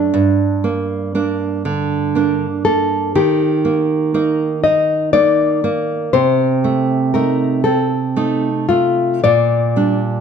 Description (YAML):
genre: romantic duo for nylon-string guitar and classical guitar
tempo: 60 BPM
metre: 3/4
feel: rubato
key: G minor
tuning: A4 = 439 Hz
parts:
  - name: nylon-string guitar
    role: melody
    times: 0.0-10.2 s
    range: D4 to Eb5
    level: -17 LUFS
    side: left 4 dB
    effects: none
  - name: nylon-string guitar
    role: accompaniment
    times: 0.0-10.2 s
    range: G2 to Eb4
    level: -16 LUFS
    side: right 4 dB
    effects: none
room: moderate recital hall reverb, RT60 1.4 s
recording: none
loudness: -14 LUFS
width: side -7 dB against mid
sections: 0.0-10.2 A section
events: none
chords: 0.1 Gm; 3.2 Eb; 6.1 Adim/C; 9.2 Gm/Bb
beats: | 0.14 1.15 2.16 | 3.16 4.14 5.13 | 6.13 7.14 8.16 | 9.24